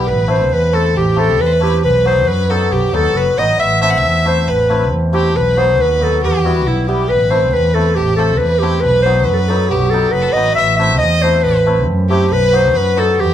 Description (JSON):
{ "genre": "klezmer", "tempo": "137 BPM", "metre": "2/4", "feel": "straight", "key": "unclear", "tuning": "A4 = 440 Hz", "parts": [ { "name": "warm clarinet", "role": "melody", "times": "0.0-13.3 s", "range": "E4 to E5", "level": "-15 LUFS", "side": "left 1 dB", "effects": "plate reverb" }, { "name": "clear violin", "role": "second line", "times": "0.0-13.3 s", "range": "E4 to F#5", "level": "-22 LUFS", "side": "right 4 dB", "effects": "none" }, { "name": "cimbalom", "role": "accompaniment", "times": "0.0-13.2 s", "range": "F#3 to G4", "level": "-21 LUFS", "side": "left 2 dB", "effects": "none" }, { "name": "dark double bass", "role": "bass", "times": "0.1-13.3 s", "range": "F#1 to F#2", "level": "-16 LUFS", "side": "right 1 dB", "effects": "none" } ], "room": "moderate studio reverb, RT60 0.5 s", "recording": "none", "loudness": "-11 LUFS", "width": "side -10 dB against mid", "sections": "0.1-7.1 A section; 7.1-13.3 A section", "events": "none", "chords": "0.1 Am; 1.8 B; 3.6 Am; 5.4 B; 6.2 Em; 7.1 Am; 8.8 B; 10.6 Am; 12.3 B" }